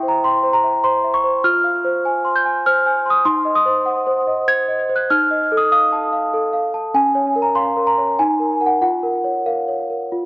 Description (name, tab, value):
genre	classical, lullaby for celesta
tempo	98 BPM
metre	3/4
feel	straight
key	F minor, Bb minor from 3.2 s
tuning	A4 = 440 Hz
part	celesta	solo	0.0-10.3 s	Db4 to Ab6	-15 LUFS	equal	cassette tape, analog delay
room	wet spring reverb, RT60 2.5 s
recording	home recording on cassette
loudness	-15 LUFS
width	side -22 dB against mid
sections	0.0-10.3 A section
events	none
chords	0.0 C/E; 1.4 Fm; 3.2 Cdim/Eb; 5.1 F7/Eb; 6.9 Bbm/Db; 8.2 Ebm; 8.8 Bbm/F